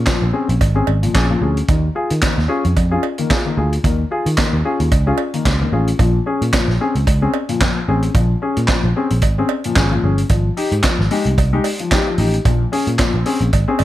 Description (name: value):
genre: disco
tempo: 111 BPM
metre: 4/4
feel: swing 56% on 16ths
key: Bb dorian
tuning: A4 = 440 Hz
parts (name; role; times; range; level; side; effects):
- picked electric bass; bass; 0.0-13.8 s; G1 to Eb3; -17 LUFS; equal; none
- warm baby grand piano; accompaniment; 0.1-13.8 s; Bb2 to Ab4; -20 LUFS; left 4 dB; none
- vintage drum kit; drums; 0.1-13.8 s; handclaps, hi-hat, kick drum, snare drum; -19 LUFS; equal; gated reverb
- cowbell; percussion; 0.1-13.8 s; none; -28 LUFS; right 14 dB; none
room: light reverb, studio reverb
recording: none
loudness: -14 LUFS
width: side -14 dB against mid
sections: 0.0-13.8 A section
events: none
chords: 0.0 Bbm7; 1.7 Eb7sus4; 6.0 Bbm7; 10.3 Fm7/Ab; 12.5 Bbm7